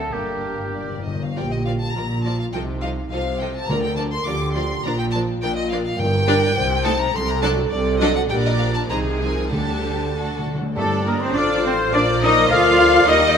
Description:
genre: quick classical-period movement for symphony orchestra.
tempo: 95-107 BPM.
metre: 2/4.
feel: rubato.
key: Bb major, G minor from 6.0 s.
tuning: A4 = 440 Hz.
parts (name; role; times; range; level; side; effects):
rich chamber violin section; melody; 0.0-13.4 s; Bb3 to D6; -26 LUFS; left 2 dB; none.
dark clarinet; second line; 0.0-1.1, 10.8-13.4 s; C4 to Bb4; -28 LUFS; left 3 dB; none.
mellow hollow concert flute; second line; 0.0-1.1, 10.8-13.1 s; F#5 to F6; -26 LUFS; left 3 dB; none.
warm oboe; second line; 0.0-1.1, 10.8-13.4 s; G4 to F5; -28 LUFS; right 2 dB; none.
warm symphonic violin section; second line; 0.0-13.4 s; F#4 to F5; -27 LUFS; left 2 dB; none.
mellow bassoon; accompaniment; 0.0-1.1, 10.8-13.4 s; F3 to Bb3; -26 LUFS; right 1 dB; none.
dark French horn section; sustained chords; 0.0-13.4 s; F#3 to D5; -26 LUFS; equal; none.
dark trumpet section; stabs; 0.0-1.0, 10.8-13.4 s; A4 to F5; -21 LUFS; left 1 dB; none.
rich chamber cello section; bass; 0.0-13.4 s; G2 to F4; -25 LUFS; equal; none.
warm chamber double bass section; bass; 0.0-13.4 s; G1 to G2; -26 LUFS; right 2 dB; none.
warm studio viola section; accompaniment; 0.1-13.4 s; Eb3 to D5; -28 LUFS; equal; none.
timpani; percussion; 0.1-1.3, 3.7-6.5, 9.5-11.3 s; G2 to D3; -29 LUFS; left 2 dB; none.
room: moderate scoring stage reverb, RT60 1.4 s.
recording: none.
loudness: -18 LUFS.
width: side -7 dB against mid.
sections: 0.0-1.4 A section; 1.4-10.8 B section; 10.8-13.4 C section.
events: timpani fill 0.1-1.4, 10.1-10.8.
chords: 0.1 Gm; 1.4 Bb; 2.5 F7/C; 3.7 Bb/D; 4.8 Bb; 6.0 Gm; 6.6 Adim/C; 7.1 D7/C; 8.3 Gm/Bb; 8.9 Ab/C; 9.5 Dsus4; 10.1 D; 10.8 Gm; 11.4 F/A; 11.9 Bb.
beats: | 0.13 0.75 | 1.37 1.96 | 2.54 3.12 | 3.70 4.27 | 4.85 5.43 | 5.99 6.56 | 7.14 7.72 | 8.30 8.90 | 9.52 10.14 | 10.76 11.36 | 11.94 12.51 | 13.09.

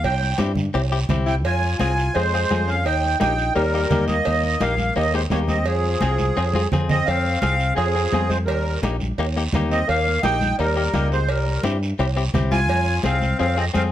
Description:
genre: latin, cumbia.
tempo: 171 BPM.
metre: 4/4.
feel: straight.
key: F minor.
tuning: A4 = 441 Hz.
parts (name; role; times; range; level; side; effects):
accordion; melody; 0.0-13.8 s; Ab4 to Ab5; -23 LUFS; right 3 dB; light tremolo tuning.
fingered electric bass; bass; 0.0-13.9 s; Bb1 to G2; -23 LUFS; equal; none.
cowbell and timbales; percussion; 0.0-13.9 s; none; -31 LUFS; right 7 dB; none.
guiro; percussion; 0.0-13.9 s; none; -36 LUFS; right 4 dB; none.
congas; percussion; 0.2-13.9 s; none; -26 LUFS; equal; none.
direct-recorded clean electric guitar; accompaniment; 0.4-13.9 s; Bb3 to Ab4; -27 LUFS; left 5 dB; none.
breathy tenor saxophone; second line; 1.3-13.8 s; F3 to F4; -27 LUFS; left 4 dB; none.
room: light reverb.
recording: none.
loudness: -18 LUFS.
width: side -12 dB against mid.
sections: 0.0-7.1 A section; 7.1-13.9 A section.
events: drum fill 6.5-7.1.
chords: 0.0 C; 1.5 Fm; 2.9 Eb; 5.7 Fm; 8.5 Eb; 11.3 C7; 12.7 Fm.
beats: | 0.04 0.40 0.75 1.10 | 1.45 1.80 2.15 2.51 | 2.86 3.21 3.56 3.91 | 4.26 4.62 4.97 5.32 | 5.67 6.02 6.37 6.72 | 7.08 7.43 7.78 8.13 | 8.48 8.83 9.18 9.54 | 9.89 10.24 10.59 10.94 | 11.29 11.64 11.99 12.35 | 12.70 13.05 13.40 13.75.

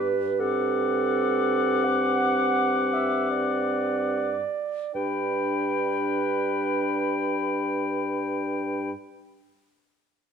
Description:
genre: classical, slow romantic movement for wind quintet.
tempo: 35-48 BPM.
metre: 3/4.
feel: rubato.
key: G major.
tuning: A4 = 441 Hz.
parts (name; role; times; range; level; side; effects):
mellow silver concert flute; melody; 0.0-8.9 s; B5 to D6; -31 LUFS; left 12 dB; none.
clear oboe; second line; 0.0-8.9 s; F#5 to G5; -32 LUFS; left 4 dB; none.
mellow French horn; accompaniment; 0.0-8.9 s; C4 to D4; -31 LUFS; left 1 dB; none.
mellow clarinet; accompaniment; 0.0-8.9 s; A4 to F#5; -29 LUFS; right 10 dB; none.
dark bassoon; bass; 0.0-8.9 s; G2; -28 LUFS; equal; none.
room: moderate recital hall reverb, RT60 1.4 s.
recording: none.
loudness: -23 LUFS.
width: side -7 dB against mid.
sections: 0.0-4.9 A section; 4.9-9.6 B section.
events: slowing down 0.0-4.9.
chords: 0.4 D7/G; 4.9 G.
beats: | 0.41 1.84 3.32 | 4.95 6.52 8.07.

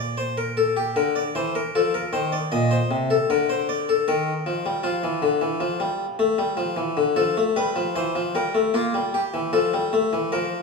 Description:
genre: classical, baroque-style two-part invention for harpsichord.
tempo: 77 BPM.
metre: 4/4.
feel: straight.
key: unclear.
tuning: A4 = 441 Hz.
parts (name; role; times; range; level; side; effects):
harpsichord; solo; 0.0-10.6 s; Bb2 to Eb5; -21 LUFS; left 2 dB; none.
room: wet recital hall reverb, RT60 1.7 s.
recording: small room reverb.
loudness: -21 LUFS.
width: side -3 dB against mid.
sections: 0.0-10.6 A section.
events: none.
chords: 0.2 C7/Bb; 1.7 F7; 3.3 Bb/D; 4.8 F; 6.4 G7; 8.0 C7/E; 9.5 F.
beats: 0.18 0.96 | 1.75 2.53 3.30 4.07 | 4.84 5.61 6.39 7.17 | 7.96 8.75 9.54 10.33.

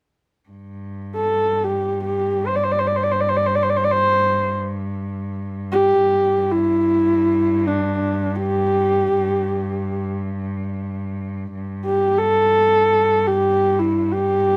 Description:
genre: mongolian traditional, Mongolian folk.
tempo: free time.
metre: none.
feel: none.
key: G zhi mode.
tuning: A4 = 440 Hz.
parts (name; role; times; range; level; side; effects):
muted cello; drone; 0.5-14.6 s; G2; -28 LUFS; equal; none.
dark horsehead fiddle; melody; 1.2-14.6 s; D4 to D5; -19 LUFS; equal; none.
room: light reverb.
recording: none.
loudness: -20 LUFS.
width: mono.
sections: 0.5-14.6 A section.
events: none.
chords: none.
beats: free time.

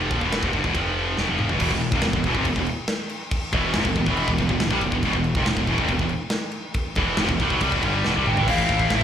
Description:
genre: heavy metal.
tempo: 140 BPM.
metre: 4/4.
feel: straight.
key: E phrygian.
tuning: A4 = 442 Hz.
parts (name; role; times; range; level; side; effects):
heavy high-gain guitar; riff; 0.0-9.0 s; E2 to E4; -26 LUFS; left 10 dB; distortion, slapback echo.
heavy high-gain guitar; riff; 0.0-9.0 s; E2 to A3; -27 LUFS; right 10 dB; distortion, slapback echo.
fuzz picked electric bass; bass; 0.0-9.0 s; E1 to C2; -26 LUFS; equal; overdrive.
tight metal drum kit; drums; 0.1-9.0 s; crash cymbal, kick drum, ride cymbal, snare drum, toms; -26 LUFS; equal; none.
tight distorted guitar; riff; 1.6-9.0 s; E2 to A3; -27 LUFS; right 1 dB; distortion.
high-gain lead guitar; melody; 8.3-9.0 s; E5 to G5; -24 LUFS; equal; distortion.
room: small room ambience.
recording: live gig heard through the venue's PA, club reverb.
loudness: -20 LUFS.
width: side -9 dB against mid.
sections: 0.0-1.6 A section; 1.6-8.5 B section.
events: drum fill 1.2-1.6, 8.1-8.5.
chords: 0.0 Em; 0.8 F5; 1.2 E5; 1.6 Em; 8.5 Am.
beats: 0.33 0.75 1.18 | 1.61 2.04 2.47 2.90 | 3.33 3.76 4.19 4.62 | 5.04 5.47 5.90 6.33 | 6.76 7.19 7.62 8.05 | 8.48 8.91.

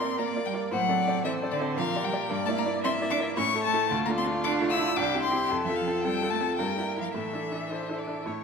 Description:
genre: quick classical-period movement for piano quartet.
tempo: 113 BPM.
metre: 3/4.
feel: straight.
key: unclear.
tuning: A4 = 439 Hz.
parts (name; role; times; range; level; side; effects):
rich violin; melody; 0.0-8.2 s; D5 to E6; -30 LUFS; left 8 dB; none.
rich cello; second line; 0.0-8.2 s; D3 to E4; -32 LUFS; right 7 dB; none.
rich violin; second line; 0.0-8.4 s; F4 to E5; -33 LUFS; left 3 dB; none.
bright baby grand piano; accompaniment; 0.0-8.4 s; C2 to D5; -30 LUFS; right 1 dB; none.
room: wet scoring stage reverb, RT60 1.4 s.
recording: minimal, uncompressed stereo recording.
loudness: -25 LUFS.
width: side -5 dB against mid.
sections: 0.0-8.4 A section.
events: none.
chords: 0.0 Gm; 0.7 D7/A; 1.8 Gm/Bb; 2.3 Em7b5/G; 3.4 A; 3.9 Dm; 5.0 C; 5.5 F; 6.6 Edim/G; 7.1 Asus4.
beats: 0.19 | 0.72 1.25 1.78 | 2.31 2.84 3.37 | 3.90 4.44 4.97 | 5.50 6.04 6.59 | 7.15 7.71 8.26.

